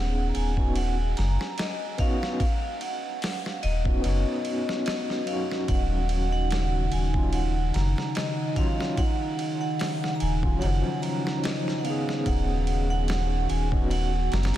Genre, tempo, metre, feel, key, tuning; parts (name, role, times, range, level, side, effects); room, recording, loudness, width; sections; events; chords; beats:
trip hop; 73 BPM; 4/4; swing 54% on 16ths; A4 = 440 Hz
vibraphone with medium hard mallets; melody; 0.0-14.6 s; Eb5 to Bb5; -32 LUFS; right 2 dB; tape echo
overdriven tine electric piano; accompaniment; 0.0-14.1 s; F3 to Ab4; -32 LUFS; equal; fast tremolo, tape echo
warm sub bass; bass; 0.0-14.5 s; Eb1 to Gb1; -25 LUFS; equal
dusty soul sampler-style drum kit; drums; 0.3-14.6 s; hi-hat, kick drum, ride cymbal, snare drum; -30 LUFS; equal
warbly tape-like pad; sustained chords; 6.0-14.6 s; Db3 to Gb4; -31 LUFS; equal; chorus, built-in reverb
light reverb, digital ambience; -24 LUFS; side -13 dB against mid
0.0-14.6 A section
0.0 Db9sus4/Eb; 5.7 Ebm9; 12.3 Db9sus4/Eb
0.76 1.58 | 2.40 3.22 4.05 4.87 | 5.69 6.51 7.33 8.15 | 8.98 9.80 10.62 11.44 | 12.27 13.09 13.91